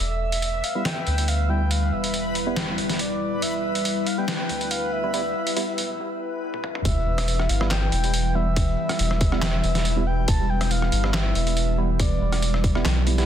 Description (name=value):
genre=deep dubstep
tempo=140 BPM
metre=4/4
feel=swing 54% on 16ths, half-time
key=E phrygian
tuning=A4 = 441 Hz
part: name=breathy flute-like synth lead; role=melody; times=0.0-12.8 s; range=D5 to A5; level=-30 LUFS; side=equal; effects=chorus, cassette tape, dub echo
part: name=deep dark ambient pad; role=sustained chords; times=0.0-13.3 s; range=E3 to B4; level=-29 LUFS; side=left 1 dB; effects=chorus, built-in reverb
part: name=soft dub sub bass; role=bass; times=0.0-13.3 s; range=E1 to D2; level=-24 LUFS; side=equal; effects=none
part: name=backwards swelling texture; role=texture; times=0.0-6.0 s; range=B4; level=-33 LUFS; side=left 1 dB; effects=built-in reverb
part: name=trip hop sampler-style drum kit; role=drums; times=0.3-13.3 s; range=handclaps, hi-hat, rim click, snare drum, toms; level=-28 LUFS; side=equal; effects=none
part: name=bright tine electric piano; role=stabs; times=0.8-13.3 s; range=G3 to E4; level=-31 LUFS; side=right 4 dB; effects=phaser, low-pass filter, dub echo
part: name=electronic kick drum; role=drums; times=6.9-12.7 s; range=none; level=-23 LUFS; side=equal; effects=none
room=light reverb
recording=dense, heavily limited modern master, high-pass filter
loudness=-21 LUFS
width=side -10 dB against mid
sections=0.0-6.9 A section; 6.9-13.3 B section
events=build-up 0.0-6.9; filter sweep on tine electric piano 0.0-6.9; filter sweep on ambient pad 0.0-6.9; break 6.0-6.9; drum fill 6.5-6.9; drop 6.9-13.3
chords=0.0 Em